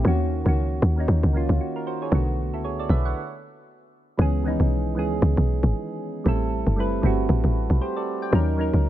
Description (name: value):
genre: amapiano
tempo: 116 BPM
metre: 4/4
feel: swing 58% on 16ths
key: unclear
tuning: A4 = 443 Hz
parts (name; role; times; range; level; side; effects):
- soft electric-piano-like synth keys; accompaniment; 0.0-8.9 s; D3 to G5; -26 LUFS; right 1 dB; chorus
- woody log drum bass; bass; 0.0-8.9 s; F#1 to D#2; -21 LUFS; equal; none
room: studio reverb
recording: none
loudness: -21 LUFS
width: side -13 dB against mid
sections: 0.0-4.2 A section; 4.2-8.9 B section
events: stop 3.2-4.2; drop 4.2-8.9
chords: 0.1 D#m7; 2.1 Bm7; 4.2 C#m7; 6.3 Am7; 8.3 D#m7